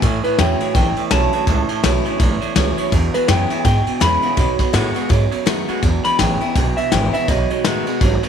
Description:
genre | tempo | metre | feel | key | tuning
rockabilly | 165 BPM | 4/4 | swing 60% on 8ths | unclear | A4 = 440 Hz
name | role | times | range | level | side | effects
picked steel-string acoustic guitar | accompaniment | 0.0-8.3 s | E2 to F#4 | -24 LUFS | left 12 dB | none
electric guitar through a small old amp | riff | 0.0-8.3 s | E2 to G#3 | -22 LUFS | right 16 dB | none
upright bass | bass | 0.0-8.3 s | G#1 to B2 | -20 LUFS | right 1 dB | none
soft brush drum kit | drums | 0.0-8.3 s | kick drum, ride cymbal, snare drum | -20 LUFS | left 2 dB | none
electric guitar through a small old amp | melody | 0.2-8.3 s | B4 to B5 | -21 LUFS | equal | tape echo
room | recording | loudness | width
light reverb, small room ambience | 1960s-style stereo with parts hard left and right | -15 LUFS | side -8 dB against mid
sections
0.0-8.3 A section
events
clean electric guitar solo 0.0-8.3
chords
0.0 A; 2.9 E; 4.4 B7; 5.8 E; 7.3 B7

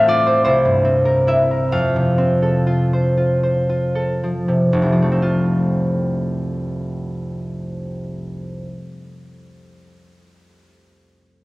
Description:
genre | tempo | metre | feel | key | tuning
classical, solo harp piece | 37-55 BPM (dotted quarters) | 6/8 | rubato | F major | A4 = 440 Hz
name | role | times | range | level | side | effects
concert harp | solo | 0.0-9.0 s | F1 to F5 | -16 LUFS | equal | none
room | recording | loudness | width
wet recital hall reverb, RT60 1.9 s | worn, warbling old tape, cassette tape, warbly pitch drift | -16 LUFS | side -21 dB against mid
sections
0.0-4.7 A section; 4.7-10.8 B section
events
slowing down 0.0-4.7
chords
0.4 C7; 1.7 F

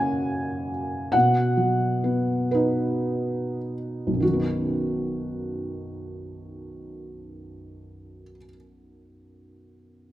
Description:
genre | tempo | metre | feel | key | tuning
classical, lyrical solo piano | 32-52 BPM (dotted quarters) | 6/8 | rubato | B major | A4 = 440 Hz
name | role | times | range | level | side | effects
felt-muted upright piano | solo | 0.0-10.1 s | B1 to G#5 | -24 LUFS | equal | none
room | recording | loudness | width
moderate recital hall reverb, RT60 1.7 s | none | -22 LUFS | side -14 dB against mid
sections
0.0-4.2 A section; 4.2-7.9 B section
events
slowing down 0.0-4.2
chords
0.0 F#; 1.1 B

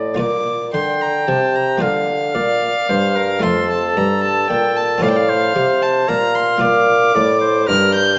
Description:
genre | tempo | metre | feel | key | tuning
classical, baroque-style sonata movement with continuo | 112 BPM | 3/4 | straight | Bb major | A4 = 442 Hz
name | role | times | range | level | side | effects
clear oboe | second line | 0.0-8.0 s | A4 to G5 | -22 LUFS | equal | none
buff-stop harpsichord | accompaniment | 0.0-8.2 s | F2 to D5 | -26 LUFS | equal | none
warm bassoon | bass | 0.0-8.2 s | F2 to D3 | -21 LUFS | equal | none
warm violin | melody | 0.2-8.2 s | F5 to G6 | -22 LUFS | equal | none
room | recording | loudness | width
wet recital hall reverb, RT60 1.5 s | nothing above 7.8 kHz | -16 LUFS | mono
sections
0.2-8.2 A section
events
none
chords
0.2 Bb; 3.4 F; 5.0 F/A; 6.6 Bb

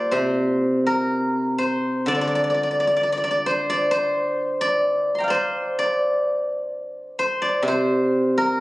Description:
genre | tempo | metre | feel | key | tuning
chinese traditional, Chinese solo plucked strings | 64 BPM | 2/4 | rubato | unclear | A4 = 437 Hz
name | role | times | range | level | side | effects
steel-string zither | solo | 0.0-8.6 s | Bb2 to C6 | -19 LUFS | equal | none
room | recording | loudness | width
moderate recital hall reverb, RT60 1.3 s | recorded on a phone in the room, club reverb | -19 LUFS | side -18 dB against mid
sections
0.1-8.6 A section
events
none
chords
none

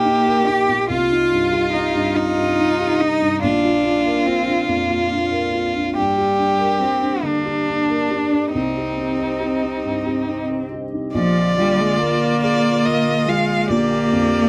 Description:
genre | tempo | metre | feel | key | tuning
neoclassical piano and strings | 47 BPM (dotted quarters) | 6/8 | rubato | unclear | A4 = 443 Hz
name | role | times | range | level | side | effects
rich violin | melody | 0.0-14.5 s | D4 to F5 | -22 LUFS | equal | none
rich cello | second line | 0.0-14.5 s | F3 to G4 | -23 LUFS | equal | none
dark upright piano | accompaniment | 0.0-14.5 s | Bb1 to C5 | -26 LUFS | equal | none
warbly tape-like pad | sustained chords | 0.0-14.5 s | D3 to F5 | -32 LUFS | equal | chorus, built-in reverb
rich viola | accompaniment | 11.2-14.5 s | F4 to G4 | -30 LUFS | equal | none
room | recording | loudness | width
light reverb | close, detailed microphones | -19 LUFS | mono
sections
0.0-11.2 A section; 11.2-14.5 A section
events
none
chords
0.0 Eb/Bb; 0.9 Cm; 3.4 Bb; 6.0 Gm; 8.5 Cm; 11.2 Bb

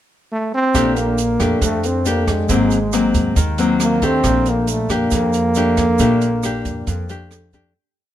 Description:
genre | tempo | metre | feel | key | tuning
bossa nova | 137 BPM | 4/4 | straight | Bb major | A4 = 440 Hz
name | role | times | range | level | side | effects
warm trombone | melody | 0.3-7.3 s | Ab3 to C4 | -18 LUFS | right 1 dB | none
nylon-string guitar | accompaniment | 0.7-7.7 s | F2 to G4 | -19 LUFS | left 2 dB | none
upright bass | bass | 0.7-7.7 s | Ab1 to F2 | -23 LUFS | right 1 dB | none
open jazz drum kit | drums | 0.7-7.6 s | hi-hat, kick drum, rim click | -25 LUFS | right 2 dB | none
egg shaker | percussion | 0.7-7.8 s | none | -32 LUFS | right 11 dB | none
room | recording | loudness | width
light reverb | minimal, uncompressed stereo recording | -15 LUFS | side -11 dB against mid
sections
0.0-0.7 pickup bar; 0.7-7.8 A section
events
fade-out 6.0-7.8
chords
0.0 N.C.; 0.7 Bb6; 2.5 Ab9; 4.2 Bb6

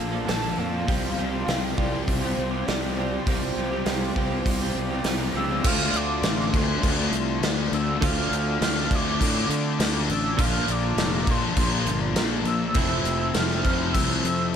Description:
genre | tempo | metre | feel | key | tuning
rock, shoegaze and dream pop | 101 BPM | 4/4 | straight | unclear | A4 = 440 Hz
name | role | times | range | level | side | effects
warm velvety synth lead | melody | 0.0-14.6 s | C5 to F6 | -32 LUFS | equal | chorus, tape echo
brassy analog pad | sustained chords | 0.0-14.6 s | Bb3 to D6 | -35 LUFS | right 1 dB | chorus
crunchy overdriven guitar | riff | 0.0-5.6 s | Bb2 to C4 | -35 LUFS | equal | none
direct-recorded clean electric guitar | riff | 0.0-14.6 s | Bb2 to A4 | -31 LUFS | right 12 dB | reverse reverb
thick fuzz guitar | riff | 0.0-14.6 s | F2 to D4 | -29 LUFS | left 10 dB | distortion, analog chorus
fuzz fingered electric bass | bass | 0.0-14.5 s | F1 to D3 | -29 LUFS | equal | overdrive
gated 80s drum kit | drums | 0.3-14.4 s | crash cymbal, hi-hat, kick drum, snare drum | -26 LUFS | equal | none
room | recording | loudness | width
little or no reverb | none | -22 LUFS | side -8 dB against mid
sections
0.0-5.7 A section; 5.7-14.6 B section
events
none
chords
0.0 Bbmaj7; 0.9 Csus4; 5.7 Dm7; 10.4 Bbmaj7; 12.8 Fmaj7

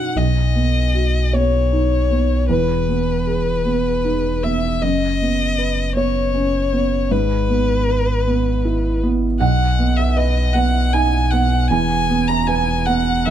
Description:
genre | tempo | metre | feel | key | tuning
neoclassical piano and strings | 52 BPM (dotted quarters) | 6/8 | rubato | B major | A4 = 441 Hz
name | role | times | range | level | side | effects
rich violin | melody | 0.0-13.3 s | B4 to A#5 | -22 LUFS | left 5 dB | none
felt-muted upright piano | accompaniment | 0.0-13.3 s | B1 to A#5 | -19 LUFS | right 3 dB | none
sub bass with octave | bass | 0.2-13.3 s | E1 to B1 | -20 LUFS | equal | none
room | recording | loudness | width
little or no reverb | none | -16 LUFS | side -10 dB against mid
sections
0.2-13.3 A section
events
none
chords
0.2 B; 2.5 Emaj7; 4.8 F#sus4; 7.1 E/G#; 9.4 B; 11.7 E5

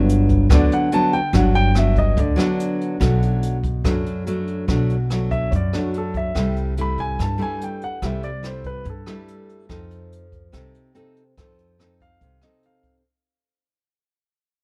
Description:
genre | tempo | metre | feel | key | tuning
bossa nova | 144 BPM | 4/4 | straight | unclear | A4 = 440 Hz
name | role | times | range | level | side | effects
nylon-string guitar | accompaniment | 0.0-13.0 s | F#2 to A4 | -25 LUFS | equal | none
upright bass | bass | 0.0-12.4 s | G1 to G2 | -22 LUFS | equal | none
jazz brush drum kit | drums | 0.1-12.9 s | hi-hat, kick drum, rim click | -28 LUFS | equal | none
warm concert grand piano | melody | 0.5-12.9 s | F#4 to B5 | -28 LUFS | equal | none
room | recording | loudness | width
little or no reverb | none | -20 LUFS | mono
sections
0.0-13.0 A section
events
fade-out 0.0-13.0; grand piano solo 0.0-13.0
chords
0.0 Gmaj7; 3.0 Bm7; 6.4 C6; 9.7 F7

